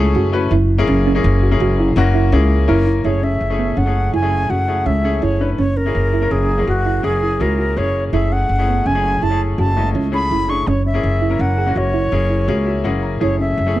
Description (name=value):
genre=progressive instrumental, progressive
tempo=165 BPM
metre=7/4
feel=straight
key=unclear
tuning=A4 = 441 Hz
part: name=bright baby grand piano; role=accompaniment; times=0.0-13.8 s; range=G#3 to A#5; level=-22 LUFS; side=left 5 dB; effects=none
part: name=upright bass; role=bass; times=0.0-13.8 s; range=F#1 to C#2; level=-17 LUFS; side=equal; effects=none
part: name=thumb-piano-like synth pluck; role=arpeggios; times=0.2-13.8 s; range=B3 to G#4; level=-22 LUFS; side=right 4 dB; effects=chorus
part: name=bright reedy baroque flute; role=melody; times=3.0-13.8 s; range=F#4 to C#6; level=-21 LUFS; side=equal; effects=none
room=studio reverb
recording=dry, close 1970s-style studio recording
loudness=-14 LUFS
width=side -15 dB against mid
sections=0.0-3.1 A section; 3.1-13.8 B section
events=grand piano fill 12.5-13.2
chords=0.0 F#m7; 0.5 F#7; 3.1 F#m7; 5.6 F#7; 8.1 F#m7; 10.7 F#7; 13.2 F#m7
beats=0.15 | 0.51 0.88 1.24 1.60 1.96 2.33 2.69 | 3.05 3.41 3.78 4.14 4.50 4.87 5.23 | 5.59 5.96 6.32 6.68 7.04 7.41 7.77 | 8.13 8.50 8.86 9.22 9.59 9.95 10.31 | 10.67 11.04 11.40 11.76 12.12 12.49 12.85 | 13.21 13.58